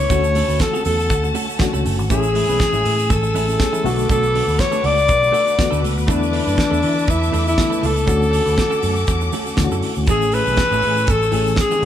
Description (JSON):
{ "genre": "disco", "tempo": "120 BPM", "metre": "4/4", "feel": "straight", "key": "A major", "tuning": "A4 = 440 Hz", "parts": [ { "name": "breathy alto saxophone", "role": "melody", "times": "0.0-11.8 s", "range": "D4 to D5", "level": "-19 LUFS", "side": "left 2 dB", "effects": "none" }, { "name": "clean electric guitar", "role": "accompaniment", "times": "0.0-11.8 s", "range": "E3 to B4", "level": "-29 LUFS", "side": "right 7 dB", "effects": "warbly pitch drift" }, { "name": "reed electric piano", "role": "accompaniment", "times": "0.0-11.8 s", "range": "D3 to G#4", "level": "-25 LUFS", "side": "left 4 dB", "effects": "overdrive, fast tremolo" }, { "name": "clear studio string section", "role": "sustained chords", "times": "0.0-11.8 s", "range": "C#4 to E6", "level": "-28 LUFS", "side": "left 1 dB", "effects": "none" }, { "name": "fingered electric bass", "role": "bass", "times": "0.0-11.8 s", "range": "F#1 to E3", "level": "-22 LUFS", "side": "equal", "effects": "none" }, { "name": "damped 70s drum kit", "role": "drums", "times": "0.1-11.8 s", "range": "hi-hat, kick drum, snare drum", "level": "-22 LUFS", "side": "right 1 dB", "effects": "none" }, { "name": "egg shaker", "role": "percussion", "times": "0.1-11.8 s", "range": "none", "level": "-36 LUFS", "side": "right 6 dB", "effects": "none" } ], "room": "light reverb", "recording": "band playing live in one room", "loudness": "-15 LUFS", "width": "side -10 dB against mid", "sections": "0.0-10.1 A section; 10.1-11.8 B section", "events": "none", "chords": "0.1 Dmaj7; 2.1 Amaj7; 3.8 Bm7; 6.1 E7sus4; 8.1 Dmaj7; 10.1 Amaj7", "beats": "| 0.10 0.60 1.10 1.60 | 2.10 2.60 3.10 3.59 | 4.09 4.59 5.09 5.59 | 6.09 6.59 7.08 7.58 | 8.08 8.58 9.08 9.58 | 10.08 10.58 11.08 11.58" }